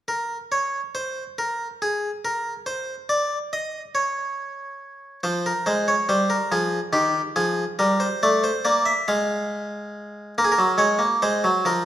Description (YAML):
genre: classical, baroque-style two-part invention for harpsichord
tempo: 47 BPM (dotted quarters)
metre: 6/8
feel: straight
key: Bb minor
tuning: A4 = 439 Hz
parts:
  - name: harpsichord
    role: solo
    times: 0.1-11.8 s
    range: Eb3 to F5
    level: -21 LUFS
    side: equal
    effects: none
room: moderate recital hall reverb, RT60 1.7 s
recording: minimal, uncompressed stereo recording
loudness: -21 LUFS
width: side -12 dB against mid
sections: 0.1-11.8 A section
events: none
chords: 0.1 N.C.; 5.2 Fm; 7.8 Edim/G; 9.1 Fm/Ab; 10.4 Bbm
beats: | 0.08 1.40 | 2.69 3.97 | 5.25 6.52 | 7.79 9.08 | 10.38 11.67